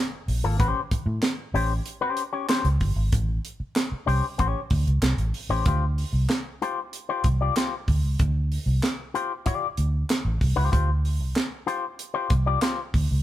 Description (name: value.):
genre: funk.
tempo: 95 BPM.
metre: 4/4.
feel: straight.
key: unclear.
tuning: A4 = 441 Hz.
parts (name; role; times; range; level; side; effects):
vintage muted fingered electric bass; bass; 0.3-13.2 s; G1 to A2; -23 LUFS; equal; none.
tight funk drum kit; drums; 0.3-13.1 s; handclaps, hi-hat, kick drum, snare drum; -26 LUFS; right 1 dB; none.
electric guitar with an envelope filter; accompaniment; 0.4-12.8 s; Bb3 to D5; -27 LUFS; left 6 dB; none.
room: light reverb.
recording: band playing live in one room.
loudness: -22 LUFS.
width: side -13 dB against mid.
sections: 0.0-5.7 A section; 5.7-13.2 B section.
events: none.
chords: 0.0 Gm9 (rootless); 0.6 A7#9; 5.7 Dm7.